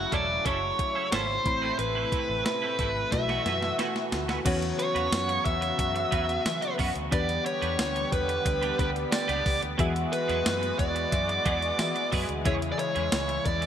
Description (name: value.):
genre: 1980s-style pop.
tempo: 90 BPM.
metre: 4/4.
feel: straight.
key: unclear.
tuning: A4 = 440 Hz.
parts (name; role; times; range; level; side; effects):
bluesy overdriven lead guitar; melody; 0.0-13.7 s; F#4 to E5; -28 LUFS; equal; distortion, ping-pong delay.
mellow FM electric piano; accompaniment; 0.0-13.7 s; A2 to B5; -35 LUFS; left 3 dB; chorus.
brassy analog pad; sustained chords; 0.0-13.7 s; C3 to G4; -35 LUFS; left 1 dB; chorus.
vintage muted fingered electric bass; bass; 0.0-13.7 s; E1 to E3; -34 LUFS; equal; none.
twelve-string electric guitar; riff; 0.1-13.7 s; F#3 to B4; -36 LUFS; right 4 dB; ensemble chorus.
clean 12-bit digital drum machine; drums; 0.1-13.7 s; crash cymbal, hi-hat, kick drum, snare drum, tambourine; -31 LUFS; equal; none.
room: moderate lush hall reverb, RT60 2.6 s.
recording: bright 1980s-style digital production.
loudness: -25 LUFS.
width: side -9 dB against mid.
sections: 0.0-4.5 A section; 4.5-13.7 B section.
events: drum fill 3.1-4.5.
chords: 0.0 F#m7; 1.5 Amadd9; 3.1 B7sus4; 4.5 Bsus2/E; 7.1 G; 9.8 Eadd9; 12.5 C#m.